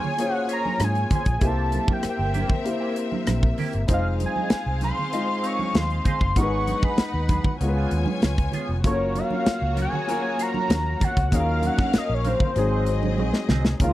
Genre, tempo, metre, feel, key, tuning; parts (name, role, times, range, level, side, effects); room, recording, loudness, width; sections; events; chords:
lush 1970s-style soul; 97 BPM; 4/4; straight; A4 = 439 Hz
fat analog lead; melody; 0.0-13.9 s; F4 to Db6; -27 LUFS; equal; chorus, slapback echo
rich studio string section; second line; 0.0-13.9 s; Bb3 to Ab5; -32 LUFS; left 4 dB
warm grand piano; accompaniment; 0.0-13.9 s; Gb3 to Eb5; -29 LUFS; left 2 dB
electric guitar through a small old amp; riff; 0.0-13.8 s; Bb3 to Db5; -36 LUFS; right 7 dB; wah, phaser
congas; percussion; 0.0-13.9 s; -31 LUFS; right 5 dB
modern studio drum kit; drums; 0.2-13.9 s; hi-hat, kick drum, rim click, snare drum; -23 LUFS; equal
vintage muted fingered electric bass; bass; 0.8-13.9 s; F1 to Ab2; -25 LUFS; equal
little or no reverb; dry, close 1970s-style studio recording; -21 LUFS; side -15 dB against mid
0.0-13.8 A section
drum fill 13.2-13.8
0.0 Bbm9; 1.4 C7; 3.9 Fm7; 6.4 Abm7; 7.6 Db7; 8.8 Gbmaj7; 11.3 Ebm7; 12.6 Ab7